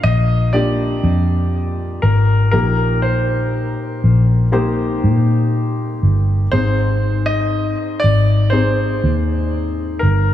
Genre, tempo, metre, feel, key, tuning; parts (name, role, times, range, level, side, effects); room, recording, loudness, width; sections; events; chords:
pop ballad; 60 BPM; 4/4; straight; Eb major; A4 = 440 Hz
clear concert grand piano; melody; 0.0-10.3 s; Bb4 to Eb5; -22 LUFS; equal; diffuse ambient delay
warm upright piano; accompaniment; 0.0-10.3 s; Ab2 to C5; -22 LUFS; left 2 dB
vintage muted fingered electric bass; bass; 0.0-10.3 s; G1 to Bb2; -15 LUFS; equal
light reverb, small room reverb; studio ambience; -14 LUFS; side -12 dB against mid
0.0-10.3 A section
0.0 Bb; 2.5 Eb/Bb; 6.5 Ab